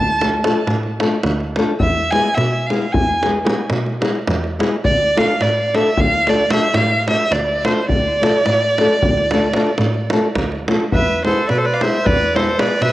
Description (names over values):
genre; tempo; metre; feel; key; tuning
balkan folk, Balkan wedding band; 217 BPM (eighths); 11/8; straight; D dorian sharp4; A4 = 437 Hz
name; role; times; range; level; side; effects
rich violin; melody; 0.0-12.9 s; C5 to A5; -18 LUFS; right 1 dB; cassette tape, tape echo
dark cello; bass; 0.0-12.9 s; D2 to B2; -22 LUFS; equal; none
nylon-string guitar; accompaniment; 0.2-12.7 s; G#3 to A4; -20 LUFS; left 2 dB; cassette tape
davul; percussion; 0.2-12.9 s; none; -20 LUFS; right 1 dB; none
accordion; second line; 10.9-12.9 s; A4 to D5; -20 LUFS; equal; cassette tape
room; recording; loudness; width
moderate spring reverb, RT60 1.6 s, small room ambience; home recording on cassette; -14 LUFS; side -15 dB against mid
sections
0.0-10.9 A section; 10.9-12.9 B section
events
none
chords
0.0 Dm; 1.8 E; 4.8 Dm; 10.9 E